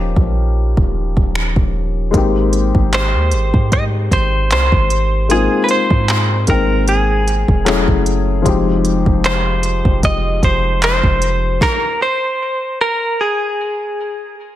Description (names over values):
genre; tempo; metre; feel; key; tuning
contemporary R&B; 76 BPM; 4/4; swing 54% on 16ths; Ab major; A4 = 439 Hz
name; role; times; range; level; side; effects
dark concert grand piano; accompaniment; 0.0-11.6 s; F3 to G5; -19 LUFS; left 6 dB; none
warm 808-style bass; bass; 0.0-11.6 s; Eb1 to Ab2; -17 LUFS; right 1 dB; none
smooth R&B drum kit; drums; 0.2-11.8 s; finger snaps, handclaps, hi-hat, kick drum, snare drum; -17 LUFS; equal; none
direct-recorded clean electric guitar; melody; 2.9-14.3 s; Ab4 to Eb5; -18 LUFS; right 1 dB; ping-pong delay
room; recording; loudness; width
little or no reverb; none; -13 LUFS; side -13 dB against mid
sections
0.0-2.1 A section; 2.1-14.6 B section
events
stop 11.6-14.6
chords
0.0 Eb7; 2.1 Abmaj7; 7.7 Gbm7; 8.5 Fm7; 11.6 N.C.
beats
0.56 1.35 | 2.14 2.93 3.72 4.51 | 5.30 6.09 6.88 7.67 | 8.46 9.24 10.03 10.82 | 11.61 12.40 13.19 13.98